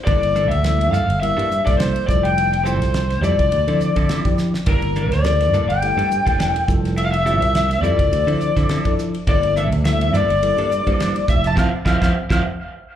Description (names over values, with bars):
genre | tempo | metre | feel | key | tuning
electric jazz fusion | 104 BPM | 4/4 | swing 55% on 16ths | G dorian | A4 = 441 Hz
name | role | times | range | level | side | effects
lead guitar through a small cranked amp | melody | 0.0-12.4 s | Bb4 to A5 | -21 LUFS | left 3 dB | overdrive, slapback echo, analog delay
breathy silver concert flute | second line | 0.1-12.4 s | Bb5 to A6 | -28 LUFS | right 1 dB | slapback echo, analog delay
tine electric piano | accompaniment | 0.1-12.4 s | F3 to C5 | -26 LUFS | right 1 dB | phaser, slapback echo
clean electric guitar | stabs | 0.1-12.4 s | E3 to A4 | -29 LUFS | right 2 dB | wide subtle chorus, slapback echo
fingered electric bass | bass | 0.1-12.4 s | E1 to D3 | -20 LUFS | right 1 dB | none
damped 70s drum kit | drums | 0.1-12.4 s | hi-hat, kick drum, ride cymbal, snare drum | -23 LUFS | right 1 dB | none
room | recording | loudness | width
light reverb | live gig heard through the venue's PA, club reverb | -16 LUFS | side -10 dB against mid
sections
0.0-13.0 A section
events
drum fill 4.4; band accent 11.6-13.0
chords
0.1 Gm69; 2.1 Fmaj9; 3.5 Dm9; 4.7 Gm69; 6.7 Fmaj9; 8.1 Dm9; 9.3 Gm69; 11.3 Fmaj9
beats
| 0.07 0.64 1.22 1.79 | 2.37 2.94 3.52 4.09 | 4.67 5.25 5.82 6.39 | 6.97 7.55 8.12 8.70 | 9.27 9.85 10.42 11.00 | 11.57 12.15